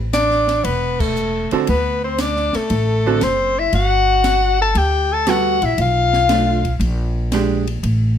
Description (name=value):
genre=jazz, small-group swing and bop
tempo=117 BPM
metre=4/4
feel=swing 69% on 8ths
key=unclear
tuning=A4 = 441 Hz
part: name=upright bass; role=bass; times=0.0-8.2 s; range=E1 to D2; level=-20 LUFS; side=equal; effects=none
part: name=breathy soprano saxophone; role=melody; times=0.1-6.8 s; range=A4 to A5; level=-18 LUFS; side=left 5 dB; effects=plate reverb
part: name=clear tenor saxophone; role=second line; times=0.1-6.8 s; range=A3 to A4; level=-23 LUFS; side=right 4 dB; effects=none
part: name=open jazz drum kit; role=drums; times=0.1-8.0 s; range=crash cymbal, hi-hat, kick drum, ride cymbal, snare drum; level=-28 LUFS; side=right 1 dB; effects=none
part: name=archtop guitar, miked and amplified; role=accompaniment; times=1.5-7.7 s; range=D3 to A4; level=-20 LUFS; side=right 6 dB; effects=none
room=light reverb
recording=none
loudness=-15 LUFS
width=side -9 dB against mid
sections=0.0-8.2 A section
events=band accent 0.9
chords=0.0 Asus2; 1.7 D7; 3.7 Gmaj9; 5.8 Bm7b5; 6.8 A#6